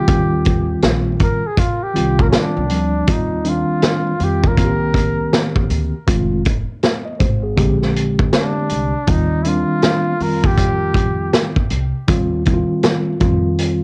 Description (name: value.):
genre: hip hop, jazz-hop.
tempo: 80 BPM.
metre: 4/4.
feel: swing 63% on 16ths.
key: Eb major.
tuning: A4 = 441 Hz.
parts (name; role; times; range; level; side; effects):
warm flugelhorn; melody; 0.0-11.6 s; Db4 to Bb4; -25 LUFS; equal; cassette tape, analog delay.
mellow tine electric piano; accompaniment; 0.0-13.8 s; D3 to Eb5; -22 LUFS; equal; none.
upright bass; bass; 0.1-13.8 s; F1 to F2; -24 LUFS; equal; none.
vintage drum kit; drums; 0.1-13.8 s; hi-hat, kick drum, snare drum; -20 LUFS; equal; cassette tape.
room: light reverb.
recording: home recording on cassette.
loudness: -17 LUFS.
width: mono.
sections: 0.0-3.1 A section; 3.1-13.8 B section.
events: flugelhorn solo 0.0-3.1; break 13.6.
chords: 0.0 Eb69; 4.6 Cm7; 6.1 Fm7; 7.6 Bb13; 9.1 Eb69.